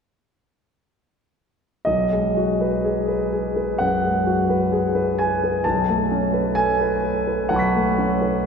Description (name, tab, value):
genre	classical, impressionist solo piano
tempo	64 BPM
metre	4/4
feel	rubato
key	B mixolydian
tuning	A4 = 442 Hz
part	warm concert grand piano	solo	1.8-8.5 s	B1 to B6	-18 LUFS	equal	none
room	wet cathedral reverb, RT60 4.7 s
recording	minimal, uncompressed stereo recording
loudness	-18 LUFS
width	side -6 dB against mid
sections	1.9-8.5 A section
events	none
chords	1.9 B6; 5.6 A69/B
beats	| 1.86 2.82 3.77 4.70 | 5.64 6.56 7.50 8.45